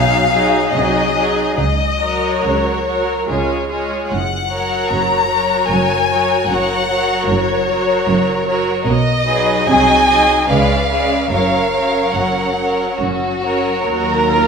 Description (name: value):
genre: classical, slow romantic movement for string orchestra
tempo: 69-77 BPM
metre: 3/4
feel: rubato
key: F# major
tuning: A4 = 438 Hz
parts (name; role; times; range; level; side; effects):
- rich chamber violin section; melody; 0.0-14.5 s; C#5 to A#5; -17 LUFS; left 4 dB; none
- clear chamber violin section; second line; 0.0-14.5 s; F#4 to D#5; -19 LUFS; equal; none
- rich studio viola section; accompaniment; 0.0-14.5 s; F#3 to F#4; -21 LUFS; right 1 dB; none
- clear chamber double bass section; bass; 0.0-14.5 s; F#1 to Eb2; -24 LUFS; right 3 dB; none
- rich studio cello section; bass; 0.0-14.5 s; Eb2 to C#3; -23 LUFS; right 3 dB; none
room: wet scoring stage reverb, RT60 1.7 s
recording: minimal, uncompressed stereo recording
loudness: -13 LUFS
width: side -6 dB against mid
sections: 0.0-13.9 A section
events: none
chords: 0.0 G#m7/B; 0.7 G#7/B#; 1.6 F#/C#; 3.3 C#; 4.1 F#; 8.9 G#m7/B; 9.7 G#7/B#; 10.5 C#7b9; 11.3 F#; 13.9 Ebm